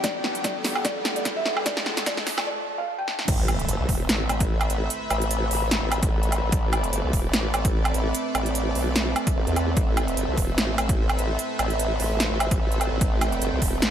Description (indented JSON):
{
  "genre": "heavy wobble dubstep",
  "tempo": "148 BPM",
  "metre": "4/4",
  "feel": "swing 55% on 16ths, half-time",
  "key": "A minor",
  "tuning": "A4 = 435 Hz",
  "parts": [
    { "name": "felt-muted upright piano", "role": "melody", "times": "0.0-3.2 s", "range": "D5 to G5", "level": "-31 LUFS", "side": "equal", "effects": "dub echo" },
    { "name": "supersaw pad", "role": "sustained chords", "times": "0.0-13.9 s", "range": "F2 to G5", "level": "-32 LUFS", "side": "equal", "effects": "vintage 12-bit sampler grit, sidechain pumping" },
    { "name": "big-room dance drum kit", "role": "drums", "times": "0.0-13.9 s", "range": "crash cymbal, hi-hat, snare drum, woodblock", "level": "-26 LUFS", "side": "right 1 dB", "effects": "overdrive" },
    { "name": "electronic kick drum", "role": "drums", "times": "0.0-13.7 s", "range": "none", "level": "-26 LUFS", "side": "equal", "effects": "overdrive" },
    { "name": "riser and impact", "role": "sound effects", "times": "0.0-4.9 s", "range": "none", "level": "-34 LUFS", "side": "right 1 dB", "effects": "none" },
    { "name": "warbly tape-like pad", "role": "texture", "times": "0.0-13.9 s", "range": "B3 to B5", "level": "-32 LUFS", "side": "right 2 dB", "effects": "chorus, built-in reverb, sidechain pumping" },
    { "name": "formant-sweep wobble bass", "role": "bass", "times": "3.3-13.9 s", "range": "E1 to E2", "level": "-26 LUFS", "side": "equal", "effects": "chorus, overdrive" }
  ],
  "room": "light reverb",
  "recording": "high-pass filter",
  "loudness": "-22 LUFS",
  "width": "side -10 dB against mid",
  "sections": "0.0-3.3 A section; 3.3-13.9 B section",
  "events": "build-up 0.0-3.3; drum fill 0.0-2.5, 3.1; riser 0.0-2.5; break 2.5-3.3; drop 3.3-13.9; impact 3.3-4.9",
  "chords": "0.0 Gadd9; 1.7 Dm/F; 3.3 Amadd9"
}